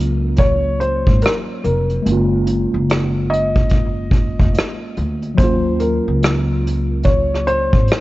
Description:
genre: lo-fi hip hop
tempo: 72 BPM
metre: 4/4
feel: swing 64% on 16ths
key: Eb dorian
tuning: A4 = 442 Hz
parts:
  - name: felt-muted upright piano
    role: melody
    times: 0.0-8.0 s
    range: Bb4 to Eb5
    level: -21 LUFS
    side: left 1 dB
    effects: low-pass filter, tape echo
  - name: mellow tine electric piano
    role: accompaniment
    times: 0.0-8.0 s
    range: Gb3 to F4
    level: -22 LUFS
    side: equal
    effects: medium stereo tremolo, low-pass filter
  - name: upright bass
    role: bass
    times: 0.0-7.9 s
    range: F1 to Eb2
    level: -19 LUFS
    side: equal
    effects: none
  - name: vintage brush drum kit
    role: drums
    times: 0.0-8.0 s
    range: hi-hat, kick drum, rim click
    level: -17 LUFS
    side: equal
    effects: none
room: little or no reverb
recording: worn, warbling old tape, cassette tape, warbly pitch drift, nothing above 7.8 kHz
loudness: -14 LUFS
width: side -17 dB against mid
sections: 0.0-8.0 A section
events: none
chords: 0.0 Ebm9 (rootless); 2.1 Gbmaj9; 5.4 Ebm9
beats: 0.39 1.22 | 2.05 2.89 3.72 4.55 | 5.39 6.22 7.05 7.89

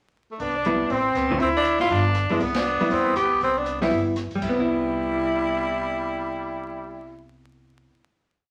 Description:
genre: jazz, small-group swing and bop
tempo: 239 BPM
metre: 4/4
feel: swing 58% on 8ths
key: C major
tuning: A4 = 442 Hz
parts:
  - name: growling tenor saxophone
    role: melody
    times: 0.3-7.2 s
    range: Ab3 to G4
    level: -28 LUFS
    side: equal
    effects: none
  - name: clear trumpet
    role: second line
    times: 0.4-7.2 s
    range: G3 to E4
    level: -29 LUFS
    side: equal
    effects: none
  - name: upright bass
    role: bass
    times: 0.4-7.9 s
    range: F#1 to E2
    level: -34 LUFS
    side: equal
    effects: none
  - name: open jazz drum kit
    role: drums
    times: 0.4-4.5 s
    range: crash cymbal, hi-hat, kick drum, ride cymbal, rim click, snare drum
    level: -38 LUFS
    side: equal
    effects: none
  - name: vintage hollow-body jazz guitar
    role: accompaniment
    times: 0.7-8.0 s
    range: D3 to F4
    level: -28 LUFS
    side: equal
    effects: none
room: wet studio reverb, RT60 0.6 s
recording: vinyl crackle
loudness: -23 LUFS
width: mono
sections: 0.0-0.4 pickup bar; 0.4-4.4 A section; 4.4-6.4 final chord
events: band accent 2.5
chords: 0.4 Cmaj7; 0.9 Amadd9; 1.4 Dmadd9; 1.9 G; 2.4 Cmaj7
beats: 0.15 | 0.40 0.65 0.90 1.15 | 1.41 1.66 1.91 2.16 | 2.41 2.66 2.92 3.17 | 3.42 3.67 3.92 4.17 | 4.42 4.67 4.92 5.17 | 5.42 5.67 5.92 6.17

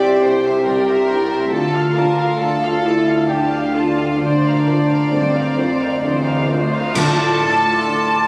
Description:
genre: cinematic, emotional film score for orchestra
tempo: 64-70 BPM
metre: 3/4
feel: rubato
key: unclear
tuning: A4 = 441 Hz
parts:
  - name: warm studio violin section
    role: melody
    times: 0.0-8.3 s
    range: C5 to A5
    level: -27 LUFS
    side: equal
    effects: none
  - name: warm studio violin section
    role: second line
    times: 0.0-8.3 s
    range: F4 to D5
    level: -26 LUFS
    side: equal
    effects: none
  - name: dark concert grand piano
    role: accompaniment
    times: 0.0-8.3 s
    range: C2 to C5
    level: -25 LUFS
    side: equal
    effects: none
  - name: dark studio viola section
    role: accompaniment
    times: 0.0-7.9 s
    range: D4 to F5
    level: -30 LUFS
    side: equal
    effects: none
  - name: mellow French horn section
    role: sustained chords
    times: 0.0-8.3 s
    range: A3 to G4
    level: -21 LUFS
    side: equal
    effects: none
  - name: dark studio double bass section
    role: bass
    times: 0.0-8.0 s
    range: C2 to D2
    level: -28 LUFS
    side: equal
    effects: none
  - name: rich symphonic cello section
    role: bass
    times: 0.0-8.3 s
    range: C2 to A2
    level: -30 LUFS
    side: equal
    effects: none
  - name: cymbal swell, clash cymbals and concert bass drum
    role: percussion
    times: 4.2-8.3 s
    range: none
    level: -29 LUFS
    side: equal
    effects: none
  - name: clear clarinet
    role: second line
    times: 7.0-8.3 s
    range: F4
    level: -25 LUFS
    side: equal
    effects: none
  - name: silver concert flute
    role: second line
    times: 7.0-8.3 s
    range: A5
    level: -29 LUFS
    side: equal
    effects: none
  - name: warm oboe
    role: second line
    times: 7.0-8.3 s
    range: D5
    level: -26 LUFS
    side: equal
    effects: none
  - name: timpani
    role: percussion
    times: 7.0-8.3 s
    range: D3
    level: -29 LUFS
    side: equal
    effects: none
room: moderate concert hall reverb, RT60 2.0 s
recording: recorded on a phone in the room, studio reverb, compression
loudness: -17 LUFS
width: mono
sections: 0.0-7.0 A section; 7.0-8.3 B section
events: band accent 7.0-7.9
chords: 0.0 Cadd9; 1.5 Dm; 4.2 Bbadd9/D; 7.0 Dm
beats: 0.66 | 1.53 2.40 3.29 | 4.21 5.12 6.03 | 6.95 7.86

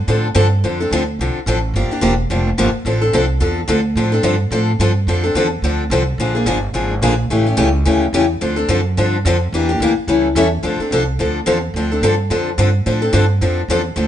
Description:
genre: acoustic string swing (jazz manouche)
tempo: 216 BPM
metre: 4/4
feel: swing 58% on 8ths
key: D minor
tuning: A4 = 440 Hz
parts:
  - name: upright bass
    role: bass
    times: 0.0-14.1 s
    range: E1 to A2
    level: -18 LUFS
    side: right 1 dB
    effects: none
  - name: picked steel-string acoustic guitar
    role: accompaniment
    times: 0.1-14.1 s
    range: C#3 to A4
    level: -16 LUFS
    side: left 2 dB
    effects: none
room: light reverb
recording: nothing above 10.5 kHz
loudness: -14 LUFS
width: side -10 dB against mid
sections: 0.0-10.6 A section; 10.6-14.1 A section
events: none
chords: 0.0 Dm7; 1.7 Gm7; 2.9 Dm7; 6.2 Bb7; 7.3 A7; 8.4 Dm7; 9.5 Em7b5; 10.1 A7; 10.6 Dm7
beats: 0.08 0.36 | 0.64 0.91 1.19 1.47 | 1.75 2.02 2.30 2.58 | 2.86 3.14 3.41 3.69 | 3.97 4.25 4.53 4.80 | 5.08 5.36 5.64 5.91 | 6.19 6.47 6.75 7.03 | 7.30 7.58 7.86 8.14 | 8.41 8.69 8.97 9.25 | 9.53 9.80 10.08 10.36 | 10.64 10.92 11.19 11.47 | 11.75 12.03 12.31 12.58 | 12.86 13.14 13.42 13.70 | 13.97

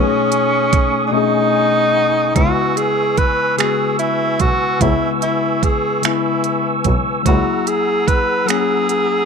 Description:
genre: slow six-eight R&B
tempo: 49 BPM (dotted quarters)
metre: 6/8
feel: straight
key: C# minor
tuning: A4 = 441 Hz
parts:
  - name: warm tenor saxophone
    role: melody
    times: 0.0-9.3 s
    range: C#4 to B4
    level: -18 LUFS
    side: right 1 dB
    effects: none
  - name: tine electric piano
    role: accompaniment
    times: 0.0-9.3 s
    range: B2 to G#5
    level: -21 LUFS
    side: left 14 dB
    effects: none
  - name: mellow tonewheel organ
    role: sustained chords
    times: 0.0-9.3 s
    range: A3 to E6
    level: -21 LUFS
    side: right 3 dB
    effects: chorus vibrato, stopped rotary speaker
  - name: smooth R&B drum kit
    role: drums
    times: 0.3-9.1 s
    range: finger snaps, hi-hat, kick drum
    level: -18 LUFS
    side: right 3 dB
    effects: none
  - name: muted double bass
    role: bass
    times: 2.4-7.3 s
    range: B1 to C#2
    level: -20 LUFS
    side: equal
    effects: transformer saturation
room: light reverb, digital ambience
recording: 1960s-style stereo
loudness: -14 LUFS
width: side -6 dB against mid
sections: 0.0-2.4 A section; 2.4-9.3 B section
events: silent gap 1.1-2.4; tine electric piano fill 1.1-2.4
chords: 0.0 B13; 2.4 C#m7; 7.3 F#9/C#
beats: 1.14 | 2.36 3.59 | 4.81 6.04 | 7.26 8.49

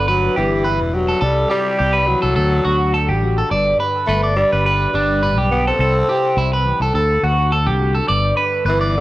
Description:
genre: highlife guitar band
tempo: 105 BPM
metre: 4/4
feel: straight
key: G major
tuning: A4 = 440 Hz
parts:
  - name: growling tenor saxophone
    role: melody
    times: 0.0-9.0 s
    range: D3 to C4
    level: -20 LUFS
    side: left 1 dB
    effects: cassette tape, tape echo
  - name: nylon-string guitar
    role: accompaniment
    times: 0.0-9.0 s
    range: G2 to G4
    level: -28 LUFS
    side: left 3 dB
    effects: cassette tape
  - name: electric guitar at the edge of break-up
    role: arpeggios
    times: 0.0-9.0 s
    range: D4 to D5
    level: -18 LUFS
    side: right 1 dB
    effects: phaser, cassette tape, tape echo
  - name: fingered electric bass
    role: bass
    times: 0.0-9.0 s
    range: E1 to D2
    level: -19 LUFS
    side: equal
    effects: none
room: moderate spring reverb, RT60 1.2 s, small room ambience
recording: home recording on cassette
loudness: -14 LUFS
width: side -16 dB against mid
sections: 0.0-9.0 A section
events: none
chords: 0.0 G; 1.2 C; 2.4 D; 3.5 G; 5.8 C; 6.9 D; 8.1 G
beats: 0.07 0.65 | 1.22 1.79 2.36 2.93 | 3.51 4.08 4.65 5.22 | 5.79 6.37 6.94 7.51 | 8.08 8.66

